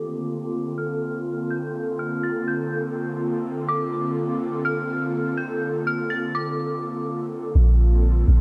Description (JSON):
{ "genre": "hip hop", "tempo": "124 BPM", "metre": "4/4", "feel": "half-time", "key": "Bb major", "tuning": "A4 = 439 Hz", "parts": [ { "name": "dark detuned synth bell", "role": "melody", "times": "0.0-7.5 s", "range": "D6 to A6", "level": "-32 LUFS", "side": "equal", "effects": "chorus, low-pass filter, tape echo" }, { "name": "airy breathy pad", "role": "sustained chords", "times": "0.0-8.4 s", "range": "D3 to A4", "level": "-28 LUFS", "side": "equal", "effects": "chorus, low-pass filter" }, { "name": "soft 808-style bass", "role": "bass", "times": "7.6-8.4 s", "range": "Bb1", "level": "-17 LUFS", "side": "equal", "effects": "transformer saturation" } ], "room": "light reverb", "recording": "dry, gritty hardware recording", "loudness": "-24 LUFS", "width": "mono", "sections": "0.0-7.6 A section", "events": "filter sweep 0.0-7.6", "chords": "0.0 Bbmaj9" }